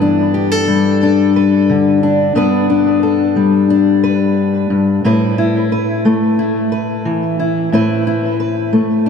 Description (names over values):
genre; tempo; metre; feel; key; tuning
folk; 89 BPM; 4/4; straight; G major; A4 = 441 Hz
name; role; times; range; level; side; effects
fingerpicked steel-string acoustic guitar; solo; 0.0-9.1 s; G2 to B4; -12 LUFS; left 2 dB; diffuse ambient delay
room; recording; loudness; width
wet huge ambient reverb, RT60 4.5 s; dreamy mix soaked in reverb; -12 LUFS; side -6 dB against mid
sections
0.0-9.1 A section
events
none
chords
0.0 G; 5.0 Amadd9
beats
0.34 1.01 1.69 | 2.36 3.03 3.70 4.37 | 5.04 5.71 6.38 7.05 | 7.72 8.39 9.06